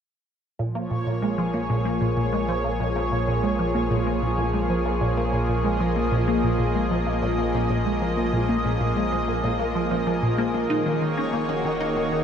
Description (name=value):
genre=ambient, sequencer-driven space music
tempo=95 BPM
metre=4/4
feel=straight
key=Bb minor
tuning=A4 = 440 Hz
part: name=lush unison pad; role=sustained chords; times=0.6-12.2 s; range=Eb3 to Eb5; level=-25 LUFS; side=equal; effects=chorus, shimmer reverb
part: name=concert harp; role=arpeggios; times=0.6-12.2 s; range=Ab3 to F4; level=-35 LUFS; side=left 2 dB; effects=none
part: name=resonant blip pluck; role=riff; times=0.6-12.2 s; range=Bb2 to Eb4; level=-25 LUFS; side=equal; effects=phaser, wide subtle chorus, analog delay
part: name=warm sub bass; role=bass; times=0.6-12.2 s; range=Eb1 to Bb1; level=-31 LUFS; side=equal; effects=tube saturation
room=wet huge ambient reverb, RT60 7.6 s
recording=none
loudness=-21 LUFS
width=side -8 dB against mid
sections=0.6-12.2 A section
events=none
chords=0.6 Bbm7; 10.7 Ebm7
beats=| 0.59 1.23 1.86 2.49 | 3.12 3.75 4.38 5.02 | 5.65 6.28 6.91 7.54 | 8.17 8.80 9.44 10.07 | 10.70 11.33 11.96